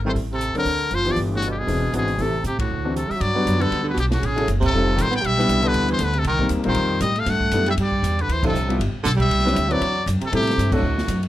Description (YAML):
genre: jazz, small-group swing and bop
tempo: 236 BPM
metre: 4/4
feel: swing 57% on 8ths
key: G major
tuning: A4 = 440 Hz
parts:
  - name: warm concert grand piano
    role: accompaniment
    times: 0.0-10.8 s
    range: E3 to B4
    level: -24 LUFS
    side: left 1 dB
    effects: none
  - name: upright bass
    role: bass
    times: 0.0-11.3 s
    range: E1 to A2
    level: -24 LUFS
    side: equal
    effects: none
  - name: trumpet with metal mute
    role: melody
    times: 0.1-11.2 s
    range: F#4 to G5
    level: -24 LUFS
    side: left 2 dB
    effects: none
  - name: breathy baritone saxophone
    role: second line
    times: 0.1-11.2 s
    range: A2 to B3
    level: -26 LUFS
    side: right 3 dB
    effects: none
  - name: open jazz drum kit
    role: drums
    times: 0.2-11.3 s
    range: crash cymbal, hi-hat, kick drum, ride cymbal, snare drum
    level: -30 LUFS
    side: equal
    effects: none
room: light reverb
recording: none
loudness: -18 LUFS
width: side -14 dB against mid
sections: 0.0-3.2 A section; 3.2-11.3 B section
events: band accent 2.6, 4.6, 8.4, 10.7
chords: 0.1 Am; 0.7 Daug; 1.2 G6; 1.7 E7b13; 2.2 Am7; 2.7 D9; 3.2 Gmaj7; 4.2 F#m9; 4.7 F9; 5.2 Em7; 6.3 Cm7; 6.8 F9; 7.3 G69; 8.3 Dm9; 8.8 G; 9.3 Cmaj9#11; 10.3 Am7